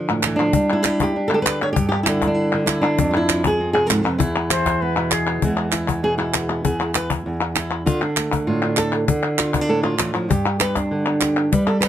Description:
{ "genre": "flamenco", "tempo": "197 BPM", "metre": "4/4", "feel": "straight", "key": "unclear", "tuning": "A4 = 445 Hz", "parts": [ { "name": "flamenco guitar", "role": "melody", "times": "0.0-11.9 s", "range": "E2 to C#5", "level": "-19 LUFS", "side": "right 1 dB", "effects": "none" }, { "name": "palmas hand claps", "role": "percussion", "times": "0.1-11.9 s", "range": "none", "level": "-23 LUFS", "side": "equal", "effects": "none" }, { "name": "cajon", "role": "percussion", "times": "0.2-11.9 s", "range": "none", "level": "-23 LUFS", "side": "left 5 dB", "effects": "none" }, { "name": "wooden flute", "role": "second line", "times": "4.5-5.4 s", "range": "G#4 to C5", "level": "-22 LUFS", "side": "left 2 dB", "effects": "none" } ], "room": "little or no reverb", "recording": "close, detailed microphones", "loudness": "-17 LUFS", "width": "side -10 dB against mid", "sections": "0.0-5.4 A section; 5.4-11.9 B section", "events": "nylon-string guitar solo 5.4-11.9", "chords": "0.0 Dm; 0.5 G5; 3.0 F; 4.2 E; 7.9 Dm; 10.3 G", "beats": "0.24 | 0.55 0.85 1.15 1.46 | 1.76 2.07 2.37 2.68 | 2.98 3.29 3.59 3.90 | 4.20 4.50 4.81 5.11 | 5.42 5.72 6.03 6.33 | 6.64 6.94 7.25 7.55 | 7.86 8.16 8.47 8.78 | 9.08 9.38 9.69 9.99 | 10.30 10.60 10.91 11.21 | 11.52 11.82" }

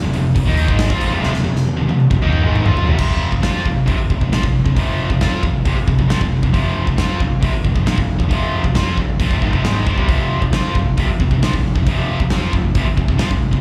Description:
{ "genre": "hard rock", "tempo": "136 BPM", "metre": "4/4", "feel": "straight", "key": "F minor", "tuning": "A4 = 440 Hz", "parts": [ { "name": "distorted electric guitar", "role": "riff", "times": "0.0-13.6 s", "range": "F2 to F4", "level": "-23 LUFS", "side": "equal", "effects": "distortion, slapback echo" }, { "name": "high-gain distorted guitar", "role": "riff", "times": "0.0-13.6 s", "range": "F2 to F4", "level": "-26 LUFS", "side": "equal", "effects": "distortion, slapback echo" }, { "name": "picked electric bass", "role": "bass", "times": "0.0-13.6 s", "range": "F1 to F2", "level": "-22 LUFS", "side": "equal", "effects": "none" }, { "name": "huge arena drum kit", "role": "drums", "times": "0.1-13.6 s", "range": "crash cymbal, hi-hat, kick drum, snare drum, toms", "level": "-21 LUFS", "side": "equal", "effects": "none" } ], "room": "light reverb", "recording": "live gig heard through the venue's PA, club reverb", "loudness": "-17 LUFS", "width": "mono", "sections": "0.0-3.0 A section; 3.0-13.6 B section", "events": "drum fill 1.2-3.0", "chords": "0.0 Fm", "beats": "0.36 0.80 | 1.24 1.68 2.12 2.56 | 3.00 3.45 3.89 4.33 | 4.78 5.22 5.66 6.10 | 6.54 6.99 7.43 7.87 | 8.32 8.76 9.20 9.64 | 10.09 10.53 10.97 11.42 | 11.86 12.30 12.75 13.19" }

